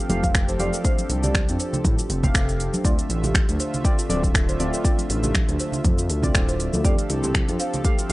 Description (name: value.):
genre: afro house.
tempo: 120 BPM.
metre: 4/4.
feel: swing 56% on 16ths.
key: D minor.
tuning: A4 = 441 Hz.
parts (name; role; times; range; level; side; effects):
marimba with medium mallets; melody; 0.0-2.2, 6.8-8.1 s; C5 to G5; -32 LUFS; right 2 dB; analog delay.
warm analog pad; sustained chords; 0.0-8.1 s; D3 to E5; -31 LUFS; equal; chorus, sidechain pumping.
kalimba; arpeggios; 0.0-8.1 s; A3 to C5; -31 LUFS; right 1 dB; sidechain pumping, analog delay.
deep mellow chord stab; stabs; 0.1-8.1 s; A3 to F5; -30 LUFS; equal; chorus, sidechain pumping, analog delay.
smooth gliding synth bass; bass; 0.1-8.1 s; D1 to A2; -26 LUFS; equal; sidechain pumping.
afro-pop drum kit; drums; 0.1-8.1 s; cabasa, finger snaps, hi-hat; -27 LUFS; equal; none.
congas; percussion; 0.1-8.1 s; none; -30 LUFS; right 1 dB; none.
electronic kick drum; drums; 0.2-8.0 s; none; -21 LUFS; equal; none.
room: little or no reverb.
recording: dry, gritty hardware recording, nothing above 10.4 kHz.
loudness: -19 LUFS.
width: side -19 dB against mid.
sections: 0.0-8.1 A section.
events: none.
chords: 0.0 Fadd9; 2.8 Dm7; 6.8 Fadd9.